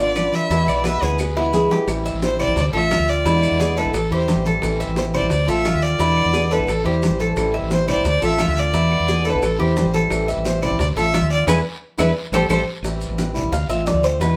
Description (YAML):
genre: latin, Cuban son and guajira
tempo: 175 BPM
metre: 4/4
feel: straight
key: A minor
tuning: A4 = 438 Hz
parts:
  - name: rich violin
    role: melody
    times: 0.0-12.6 s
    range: A4 to E5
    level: -25 LUFS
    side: equal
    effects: none
  - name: picked acoustic archtop guitar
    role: accompaniment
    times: 0.0-14.4 s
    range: B2 to F4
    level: -29 LUFS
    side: equal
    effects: none
  - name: Cuban tres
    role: arpeggios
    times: 0.0-14.4 s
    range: E4 to F5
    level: -26 LUFS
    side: equal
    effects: none
  - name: woody fretless electric bass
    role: bass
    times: 0.0-14.4 s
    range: G#1 to E2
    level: -24 LUFS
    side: equal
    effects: none
  - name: bongos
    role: percussion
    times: 0.2-14.4 s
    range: none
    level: -32 LUFS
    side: equal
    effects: none
  - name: claves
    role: percussion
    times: 0.2-12.6 s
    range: none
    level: -36 LUFS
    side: equal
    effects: none
  - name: congas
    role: percussion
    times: 0.2-14.4 s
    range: none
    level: -29 LUFS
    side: equal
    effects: none
  - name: guiro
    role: percussion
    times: 0.2-14.4 s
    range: none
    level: -40 LUFS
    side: equal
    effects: none
  - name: maracas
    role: percussion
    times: 0.2-14.4 s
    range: none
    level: -40 LUFS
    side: equal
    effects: none
  - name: flamenco guitar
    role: second line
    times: 1.4-1.9 s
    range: E4 to G#4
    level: -24 LUFS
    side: equal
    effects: none
room: wet studio reverb, RT60 0.6 s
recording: band playing live in one room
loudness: -19 LUFS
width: mono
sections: 0.0-1.9 A section; 1.9-12.8 B section; 12.8-14.4 C section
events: drum fill 1.2-1.9, 12.3-12.8; band accent 11.5-12.8; Cuban tres solo 12.8-14.4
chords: 0.0 Bdim; 0.5 E; 1.9 Am7; 2.6 Dm7; 3.3 E7; 3.9 Am7; 5.3 Dm7; 6.0 E7; 6.7 Am7; 8.1 Dm7; 8.7 E7; 9.4 Am7; 10.8 Dm7; 11.5 E7; 12.2 Am7; 13.5 Dm7